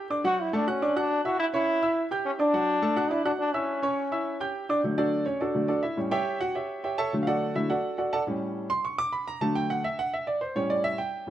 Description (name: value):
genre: latin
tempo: 209 BPM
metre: 4/4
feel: straight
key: D major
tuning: A4 = 440 Hz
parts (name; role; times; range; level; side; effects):
- warm grand piano; accompaniment; 0.0-11.3 s; A2 to G6; -26 LUFS; right 1 dB; none
- bright trombone; melody; 0.3-4.5 s; C#4 to F#4; -26 LUFS; left 1 dB; none
room: moderate plate reverb, RT60 2.3 s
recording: none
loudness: -25 LUFS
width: side -12 dB against mid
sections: 0.0-4.8 A section; 4.8-11.3 B section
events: grand piano solo 4.8-11.3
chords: 0.2 D; 1.4 C#dim; 2.5 D; 3.7 C#dim; 4.8 D; 6.0 A7; 7.1 D; 8.3 A7; 9.4 D; 10.6 A7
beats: | 0.24 0.53 0.81 1.10 | 1.39 1.67 1.96 2.25 | 2.53 2.82 3.11 3.39 | 3.68 3.97 4.25 4.54 | 4.83 5.11 5.40 5.69 | 5.97 6.26 6.55 6.83 | 7.12 7.41 7.70 7.98 | 8.27 8.55 8.84 9.13 | 9.41 9.70 9.99 10.27 | 10.56 10.85 11.13